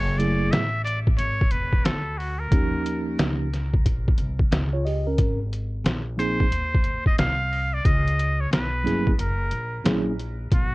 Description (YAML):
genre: hip hop, jazz-hop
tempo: 90 BPM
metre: 4/4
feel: swing 66% on 16ths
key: unclear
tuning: A4 = 438 Hz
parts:
  - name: trumpet with straight mute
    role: melody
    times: 0.0-10.7 s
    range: F#4 to E#5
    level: -28 LUFS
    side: equal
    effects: plate reverb, tape echo
  - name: upright bass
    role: bass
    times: 0.0-10.7 s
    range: E1 to D#2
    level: -27 LUFS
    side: equal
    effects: none
  - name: mellow tine electric piano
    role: accompaniment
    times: 0.2-10.1 s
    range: C#3 to D#5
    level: -26 LUFS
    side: right 2 dB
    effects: fast stereo tremolo, plate reverb
  - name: trip hop sampler-style drum kit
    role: drums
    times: 0.2-10.7 s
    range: hi-hat, kick drum, snare drum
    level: -22 LUFS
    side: equal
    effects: vintage 12-bit sampler grit
room: light reverb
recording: cassette tape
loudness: -21 LUFS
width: side -21 dB against mid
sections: 0.0-10.5 A section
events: break 9.2-10.5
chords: 0.0 F#m9; 2.5 D#7; 5.2 G#69; 7.8 C#m7b5; 9.2 F#7